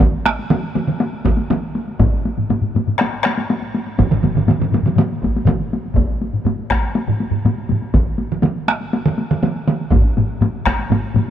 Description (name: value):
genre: japanese traditional, taiko drum ensemble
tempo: 121 BPM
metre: 4/4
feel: straight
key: none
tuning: none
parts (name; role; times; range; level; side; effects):
- solo taiko drums; percussion; 0.0-11.3 s; none; -22 LUFS; left 2 dB; none
- taiko ensemble; percussion; 0.0-9.8 s; none; -20 LUFS; right 3 dB; none
- taiko ensemble; percussion; 0.0-10.8 s; none; -19 LUFS; right 1 dB; none
- taiko ensemble; percussion; 2.0-11.3 s; none; -19 LUFS; left 1 dB; none
room: light reverb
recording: none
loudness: -16 LUFS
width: side -10 dB against mid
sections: 0.0-6.0 A section; 6.0-11.3 B section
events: none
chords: none